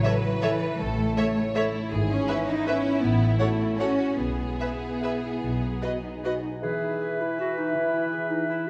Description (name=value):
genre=classical, orchestral ballroom waltz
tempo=138-174 BPM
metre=3/4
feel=rubato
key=E major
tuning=A4 = 441 Hz
part: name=rich symphonic violin section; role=melody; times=0.0-6.3 s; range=D#5 to F#5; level=-40 LUFS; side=equal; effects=none
part: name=rich symphonic violin section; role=second line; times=0.0-6.4 s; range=E4 to C#5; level=-36 LUFS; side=equal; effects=none
part: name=warm symphonic viola section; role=accompaniment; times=0.0-6.3 s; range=F#4 to C#5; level=-35 LUFS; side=equal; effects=none
part: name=mellow French horn section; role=sustained chords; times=0.0-6.4 s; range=F#4 to E5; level=-37 LUFS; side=equal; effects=none
part: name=concert harp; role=arpeggios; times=0.0-8.7 s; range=G#2 to E5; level=-35 LUFS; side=equal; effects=none
part: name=rich symphonic cello section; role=bass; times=0.0-6.4 s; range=E3 to D#4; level=-30 LUFS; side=equal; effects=none
part: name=rich studio double bass section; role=bass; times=0.8-5.8 s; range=G#1 to B1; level=-31 LUFS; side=equal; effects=none
part: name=clear clarinet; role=second line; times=6.6-8.7 s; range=D#4 to G#4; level=-32 LUFS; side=equal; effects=none
part: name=mellow flute section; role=second line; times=6.6-8.7 s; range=E5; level=-35 LUFS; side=equal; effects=none
part: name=warm oboe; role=second line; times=6.6-8.7 s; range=B4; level=-35 LUFS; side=equal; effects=none
part: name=warm bassoon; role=accompaniment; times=6.6-8.7 s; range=E3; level=-34 LUFS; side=equal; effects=none
room=wet scoring stage reverb, RT60 2.0 s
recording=none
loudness=-26 LUFS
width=mono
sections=0.0-6.6 A section; 6.6-8.7 B section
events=none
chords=0.0 A; 1.9 E/G#; 3.0 F#m/A; 4.2 E/B; 5.4 B; 6.6 E